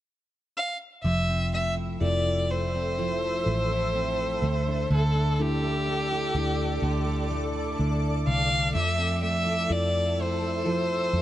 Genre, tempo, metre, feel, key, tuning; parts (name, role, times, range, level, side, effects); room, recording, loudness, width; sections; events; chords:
pop; 62 BPM; 4/4; straight; F major; A4 = 440 Hz
warm violin; melody; 0.6-11.2 s; G4 to F5; -28 LUFS; equal
bell-like tine electric piano; accompaniment; 1.0-11.2 s; D3 to A4; -32 LUFS; left 3 dB; analog chorus
shimmering ambient pad; sustained chords; 1.9-11.2 s; A4 to E6; -35 LUFS; right 1 dB; chorus, built-in reverb
fingerpicked steel-string acoustic guitar; arpeggios; 1.0-11.2 s; D3 to E4; -34 LUFS; right 5 dB
vintage muted fingered electric bass; bass; 1.0-11.2 s; F1 to F2; -28 LUFS; equal
light reverb, studio reverb; nothing above 10.4 kHz; -24 LUFS; side -13 dB against mid
0.0-1.1 A section; 1.1-11.2 B section
0.0 N.C.; 1.1 Fmaj7; 4.4 Dsus2; 8.7 Fmaj7